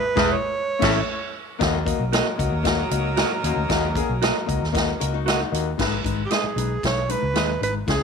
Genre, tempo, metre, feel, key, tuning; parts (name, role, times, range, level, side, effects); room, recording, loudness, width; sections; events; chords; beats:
uptempo 1960s-style soul; 115 BPM; 4/4; straight; G# minor; A4 = 440 Hz
clear alto saxophone; melody; 0.0-1.4, 6.3-8.0 s; G4 to C#5; -25 LUFS; right 4 dB
warm upright piano; accompaniment; 0.2-8.0 s; E3 to F#5; -27 LUFS; left 12 dB
clear baritone saxophone; riff; 0.2-5.7 s; D#2 to F#2; -31 LUFS; left 11 dB
clean electric guitar; stabs; 0.2-7.5 s; F#4 to E5; -28 LUFS; right 12 dB
vintage muted fingered electric bass; bass; 0.2-8.0 s; E1 to D#2; -26 LUFS; equal
swinging big-band drum kit; drums; 0.2-8.0 s; crash cymbal, hi-hat, kick drum, snare drum; -25 LUFS; right 1 dB
archtop guitar, miked and amplified; riff; 0.8-1.0, 5.0-5.8 s; C#4 to A#4; -32 LUFS; left 15 dB
warm saxophone section; second line; 1.6-5.5 s; F#3 to A#4; -30 LUFS; right 2 dB
moderate spring reverb, RT60 1.8 s, studio ambience; 1960s-style stereo with parts hard left and right; -20 LUFS; side -6 dB against mid
0.0-1.6 A section; 1.6-5.8 B section; 5.8-8.0 C section
band accent 0.0-1.6
0.3 A; 1.1 N.C.; 1.6 D#m; 5.8 G#m
0.04 0.56 1.08 | 1.61 2.13 2.65 3.17 | 3.70 4.22 4.74 5.26 | 5.79 6.31 6.83 7.36 | 7.88